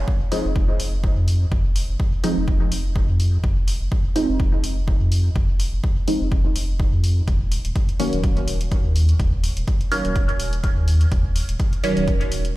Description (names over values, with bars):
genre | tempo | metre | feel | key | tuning
dub techno | 125 BPM | 4/4 | swing 55% on 16ths | F phrygian | A4 = 445 Hz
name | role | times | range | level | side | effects
warm sub bass | bass | 0.0-12.6 s | Eb1 to F2 | -21 LUFS | equal | sidechain pumping
electronic kick drum | drums | 0.1-12.2 s | none | -21 LUFS | equal | none
filtered dub chord stab | stabs | 0.3-12.6 s | Eb3 to Eb4 | -25 LUFS | right 1 dB | phaser, sidechain pumping, dub echo
electronic hi-hat | drums | 0.3-12.5 s | none | -34 LUFS | left 1 dB | none
room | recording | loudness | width
digital ambience | played on a big sound system in a bare room, stone room reverb | -18 LUFS | side -18 dB against mid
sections
0.0-12.6 A section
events
none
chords
0.0 Fm7; 7.3 Ebm7